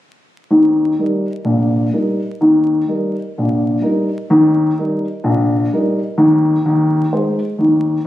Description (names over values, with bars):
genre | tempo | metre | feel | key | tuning
jazz, stride piano | 127 BPM | 4/4 | swing 63% on 8ths | Eb major | A4 = 440 Hz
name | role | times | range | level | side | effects
dark upright piano | solo | 0.5-8.1 s | Bb1 to C5 | -13 LUFS | left 1 dB | none
room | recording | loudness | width
light reverb | recorded on a phone in the room, studio reverb, vinyl crackle, compression | -13 LUFS | side -14 dB against mid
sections
0.5-8.1 A section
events
none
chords
0.5 Eb; 6.2 Ab/Eb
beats
| 0.52 0.99 1.46 1.93 | 2.40 2.88 3.35 3.82 | 4.29 4.76 5.24 5.71 | 6.18 6.65 7.12 7.59 | 8.06